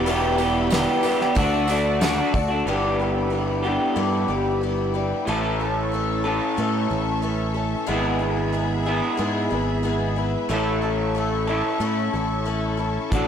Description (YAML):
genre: folk rock and heartland rock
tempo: 92 BPM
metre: 4/4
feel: straight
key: unclear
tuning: A4 = 437 Hz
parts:
  - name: picked twelve-string acoustic guitar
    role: accompaniment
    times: 0.0-13.3 s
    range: E2 to A4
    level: -26 LUFS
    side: left 5 dB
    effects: none
  - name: clear symphonic string section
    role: sustained chords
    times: 0.0-13.3 s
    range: F#4 to D6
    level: -33 LUFS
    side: equal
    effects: none
  - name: electric guitar through a small old amp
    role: riff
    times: 0.0-13.3 s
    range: E2 to A4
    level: -24 LUFS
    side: right 1 dB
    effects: lush chorus
  - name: fingered electric bass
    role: bass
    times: 0.0-13.3 s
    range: E1 to A2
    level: -27 LUFS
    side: right 1 dB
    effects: transformer saturation
  - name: soft brush drum kit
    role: drums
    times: 0.1-2.5, 13.1-13.3 s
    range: hi-hat, kick drum, snare drum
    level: -26 LUFS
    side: equal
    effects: none
  - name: tambourine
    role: percussion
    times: 0.1-2.2 s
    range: none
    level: -40 LUFS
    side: right 10 dB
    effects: none
room: moderate large studio reverb, RT60 1.1 s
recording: blown-out, overdriven recording, overdrive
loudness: -20 LUFS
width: side -8 dB against mid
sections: 0.0-2.7 A section; 2.7-13.3 B section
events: none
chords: 0.0 Em; 1.4 D; 2.7 G6; 5.3 A; 7.9 E/G#; 10.5 A